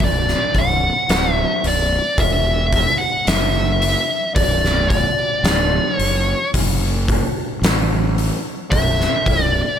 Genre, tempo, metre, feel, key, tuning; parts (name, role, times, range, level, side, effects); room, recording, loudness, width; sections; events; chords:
stoner and doom metal; 55 BPM; 4/4; straight; B minor; A4 = 435 Hz
fuzz lead guitar; melody; 0.0-9.8 s; D5 to F#5; -19 LUFS; equal; distortion, ping-pong delay
fuzz fingered electric bass; bass; 0.0-9.6 s; B0 to A1; -20 LUFS; equal; overdrive
oversized low-tuned drum kit; drums; 0.0-9.5 s; hi-hat, kick drum, snare drum; -20 LUFS; equal
little or no reverb; -15 LUFS; side -9 dB against mid
0.0-9.8 A section
0.0 Bm